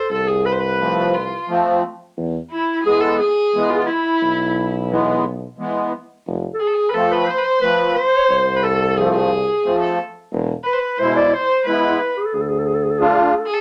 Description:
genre	klezmer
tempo	88 BPM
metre	3/4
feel	straight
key	unclear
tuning	A4 = 440 Hz
part	mellow clarinet	melody	0.0-13.6 s	E4 to D5	-21 LUFS	equal	none
part	warm violin	second line	0.0-13.6 s	E4 to C5	-25 LUFS	equal	none
part	clear tuba	bass	0.1-13.1 s	E1 to E2	-25 LUFS	equal	none
part	musette accordion	accompaniment	0.8-13.3 s	B2 to F4	-21 LUFS	equal	none
room	moderate club ambience, RT60 0.5 s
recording	none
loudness	-19 LUFS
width	mono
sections	0.0-6.3 A section; 6.3-13.6 B section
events	speeding up 0.0-13.6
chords	0.0 F; 2.2 E; 6.3 F; 10.3 E; 12.3 Dm

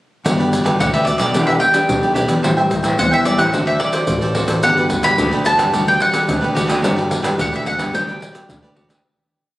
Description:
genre	samba and choro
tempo	109 BPM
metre	4/4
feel	straight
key	G major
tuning	A4 = 439 Hz
part	cavaquinho	accompaniment	0.2-9.0 s	E4 to G5	-22 LUFS	right 1 dB	none
part	nylon-string guitar	accompaniment	0.3-9.0 s	A2 to A4	-24 LUFS	left 2 dB	none
part	growling fingered electric bass	bass	0.3-9.0 s	E1 to E2	-20 LUFS	equal	overdrive
part	egg shaker, surdo and pandeiro	percussion	0.3-9.0 s	none	-22 LUFS	equal	none
part	mandolin	melody	0.8-8.5 s	D5 to B5	-18 LUFS	equal	none
room	moderate recital hall reverb, RT60 1.9 s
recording	recorded on a phone in the room, club reverb, compression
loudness	-14 LUFS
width	side -16 dB against mid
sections	0.3-9.0 A section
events	fade-out 6.8-9.0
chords	0.3 Gmaj9; 1.3 Em7; 2.4 Am7; 3.5 D7; 4.6 Gmaj9

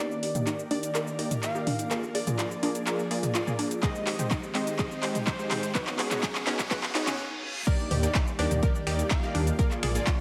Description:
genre	progressive house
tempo	125 BPM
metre	4/4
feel	straight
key	Eb major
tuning	A4 = 440 Hz
part	plucky unison lead	melody	0.0-10.2 s	Ab4 to F5	-38 LUFS	equal	tape echo
part	airy breathy pad	sustained chords	0.0-10.2 s	D3 to D5	-40 LUFS	equal	chorus, sidechain pumping
part	analog pluck	arpeggios	0.0-10.1 s	C4 to B4	-38 LUFS	equal	chorus, sidechain pumping, tape echo
part	supersaw stab	stabs	0.0-10.1 s	Ab3 to D5	-36 LUFS	equal	sidechain pumping, low-pass filter, tape echo
part	riser and reverse cymbal	sound effects	3.7-7.7 s	none	-44 LUFS	equal	none
part	deep house drum kit	drums	0.1-10.2 s	cabasa, crash cymbal, finger snaps, handclaps, hi-hat	-35 LUFS	equal	overdrive
part	electronic toms and bongos	percussion	0.3-9.9 s	none	-36 LUFS	equal	sidechain pumping on perc, sidechain pumping on toms
part	electronic kick drum	drums	3.8-10.2 s	none	-30 LUFS	equal	overdrive
part	dark detuned saw bass	bass	7.9-10.0 s	Bb1 to Eb2	-30 LUFS	equal	sidechain pumping
room	moderate digital room reverb, RT60 1.2 s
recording	high-pass filter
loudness	-28 LUFS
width	mono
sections	0.0-7.7 A section; 7.7-10.2 B section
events	build-up 0.0-7.7; drum fill 0.0-7.2; filter sweep on synth arpeggio sound 0.0-7.7; filter sweep on supersaw synth 0.0-7.7; filter sweep 0.0-7.7; reverse cymbal 6.7-7.7; stop 7.2-7.7; drop 7.7-10.2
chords	0.0 Ebmaj7; 1.9 Bb7; 3.8 Abmaj7; 5.7 Badd9; 7.7 Ebmaj7; 9.6 Bb7

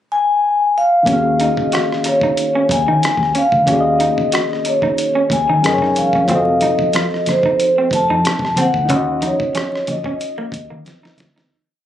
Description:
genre	R&B, neo-soul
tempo	92 BPM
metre	4/4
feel	swing 54% on 16ths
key	Eb dorian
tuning	A4 = 439 Hz
part	vibraphone with soft mallets	melody	0.1-11.2 s	C5 to A5	-16 LUFS	equal	none
part	reed electric piano	accompaniment	1.0-11.5 s	Eb3 to F5	-20 LUFS	left 2 dB	fast tremolo
part	electric guitar through a small old amp	second line	1.1-11.4 s	Bb3 to Gb4	-23 LUFS	right 4 dB	none
part	deep dub fingered electric bass	bass	1.1-11.5 s	Fb1 to Eb3	-22 LUFS	equal	none
part	dusty soul sampler-style drum kit	drums	1.1-11.5 s	hi-hat, kick drum, rim click, snare drum	-23 LUFS	equal	none
part	congas	percussion	6.3-11.3 s	none	-26 LUFS	left 1 dB	none
room	light reverb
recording	recorded on a phone in the room, club reverb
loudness	-13 LUFS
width	side -11 dB against mid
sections	0.0-1.1 pickup bar; 1.1-11.5 A section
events	fade-out 8.9-11.5; drum fill 10.8-11.5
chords	0.0 N.C.; 1.1 Ebm11; 5.6 Gb9; 6.3 F7b9; 8.9 Ebm7

